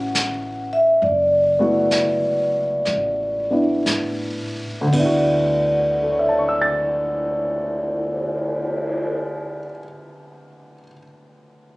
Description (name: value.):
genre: jazz ballad.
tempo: 55-71 BPM.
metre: 4/4.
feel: swing 66% on 8ths.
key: D major.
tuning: A4 = 440 Hz.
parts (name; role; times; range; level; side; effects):
vibraphone with medium mallets; melody; 0.0-9.7 s; D5 to F#5; -20 LUFS; equal; none.
warm concert grand piano; accompaniment; 0.0-11.8 s; D2 to A6; -23 LUFS; equal; none.
upright bass; bass; 0.0-9.7 s; F#1 to A2; -33 LUFS; equal; none.
vintage brush drum kit; drums; 0.1-9.1 s; brushed snare drum, cymbal swell, hi-hat, kick drum, ride cymbal, snare drum; -27 LUFS; equal; none.
room: light reverb.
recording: recorded on a phone in the room, club reverb.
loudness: -18 LUFS.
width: side -23 dB against mid.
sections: 0.0-4.9 A section; 4.9-9.3 B section.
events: slowing down 0.0-4.9.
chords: 0.0 D69.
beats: 0.15 | 1.01 1.91 2.86 3.86 | 4.92 6.02 7.10 8.19.